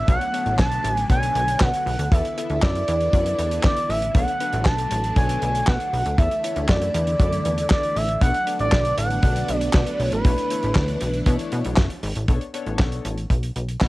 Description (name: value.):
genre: early-eighties boogie funk.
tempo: 118 BPM.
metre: 4/4.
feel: straight.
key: B minor.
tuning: A4 = 440 Hz.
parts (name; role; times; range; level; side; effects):
expressive synth lead; melody; 0.0-11.7 s; B4 to A5; -24 LUFS; right 1 dB; chorus, cassette tape.
string machine, violins; sustained chords; 0.0-12.3 s; D3 to E4; -30 LUFS; equal; phaser, ensemble chorus, cassette tape.
plucky analog bass; bass; 0.0-13.9 s; F#1 to B2; -25 LUFS; equal; none.
chorused polysynth; accompaniment; 0.1-13.1 s; A3 to E5; -32 LUFS; left 6 dB; cassette tape.
damped 70s drum kit; drums; 0.1-13.9 s; handclaps, hi-hat, kick drum, snare drum; -21 LUFS; equal; cassette tape.
room: small room ambience.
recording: home recording on cassette.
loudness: -19 LUFS.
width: side -19 dB against mid.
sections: 0.0-12.3 A section; 12.3-13.9 B section.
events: none.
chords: 0.1 Bm9; 2.1 E7sus4; 4.1 Bm9; 6.2 E7sus4; 8.2 Bm9; 10.3 Bm11; 12.3 Bm9.